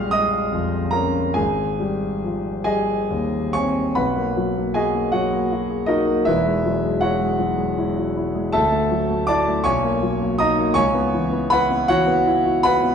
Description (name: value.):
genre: classical, impressionist solo piano.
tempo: 45-55 BPM (dotted quarters).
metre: 6/8.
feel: rubato.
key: Ab major, B major from 4.0 s.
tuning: A4 = 440 Hz.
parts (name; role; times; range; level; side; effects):
clear concert grand piano; solo; 0.0-12.9 s; E1 to F6; -18 LUFS; equal; none.
room: wet recital hall reverb, RT60 1.6 s.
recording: dark, warm production.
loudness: -18 LUFS.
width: side -7 dB against mid.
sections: 0.0-4.0 A section; 4.0-12.9 B section.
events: none.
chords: 0.0 Bbm7; 1.4 Abmaj7; 4.0 Bmaj7; 6.3 E69; 8.6 Dadd9; 9.7 Bmaj9; 10.8 C#m7.